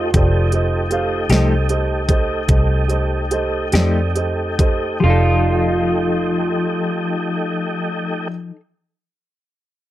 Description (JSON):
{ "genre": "slow blues", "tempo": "45-53 BPM (dotted quarters)", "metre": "12/8", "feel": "straight", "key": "F mixolydian", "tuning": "A4 = 440 Hz", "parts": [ { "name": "electric guitar through a small old amp", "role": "second line", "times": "0.0-8.3 s", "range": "F4", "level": "-23 LUFS", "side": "right 3 dB", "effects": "none" }, { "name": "dark upright piano", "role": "accompaniment", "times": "0.0-8.3 s", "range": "G4 to F5", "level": "-24 LUFS", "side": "right 4 dB", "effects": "none" }, { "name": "tonewheel organ", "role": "sustained chords", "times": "0.0-8.3 s", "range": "A3 to G4", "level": "-24 LUFS", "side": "equal", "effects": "slow rotary speaker, chorus vibrato" }, { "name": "vintage muted fingered electric bass", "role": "bass", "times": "0.0-8.3 s", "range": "F1 to F2", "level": "-19 LUFS", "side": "equal", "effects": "none" }, { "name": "pop drum kit", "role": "drums", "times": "0.1-4.8 s", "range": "hi-hat, kick drum, snare drum", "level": "-18 LUFS", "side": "equal", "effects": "none" }, { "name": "clean electric guitar", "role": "accompaniment", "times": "1.3-8.6 s", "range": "F3 to A4", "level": "-22 LUFS", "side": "left 5 dB", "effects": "tremolo" } ], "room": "light reverb", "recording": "dark, warm production", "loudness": "-16 LUFS", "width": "side -14 dB against mid", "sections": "0.0-5.0 A section; 5.0-9.9 B section", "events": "slowing down 0.0-5.0", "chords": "0.0 F9; 5.0 F13" }